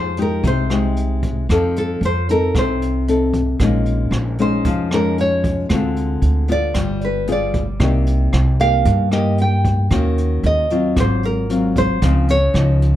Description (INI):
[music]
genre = bossa nova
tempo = 114 BPM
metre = 4/4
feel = straight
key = F minor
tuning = A4 = 440 Hz
[part]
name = nylon-string guitar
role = melody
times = 0.0-13.0 s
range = A4 to G5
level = -21 LUFS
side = right 1 dB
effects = none
[part]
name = nylon-string guitar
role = accompaniment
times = 0.0-13.0 s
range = G2 to A4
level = -20 LUFS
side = left 3 dB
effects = none
[part]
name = upright bass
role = bass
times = 0.0-13.0 s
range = G1 to G2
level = -19 LUFS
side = right 1 dB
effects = none
[part]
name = jazz brush drum kit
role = drums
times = 0.2-12.9 s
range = hi-hat, kick drum, rim click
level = -24 LUFS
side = right 1 dB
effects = none
[sound]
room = light reverb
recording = dark, warm production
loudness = -15 LUFS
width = side -12 dB against mid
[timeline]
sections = 0.0-13.0 A section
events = nylon-string guitar solo 0.0-13.0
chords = 0.0 Fm9; 1.5 F7; 3.6 Bbm11; 5.7 Dm7b5; 6.8 G7b9; 7.8 Cm7; 9.9 Ebm7; 11.0 Ab13; 12.0 Dbmaj9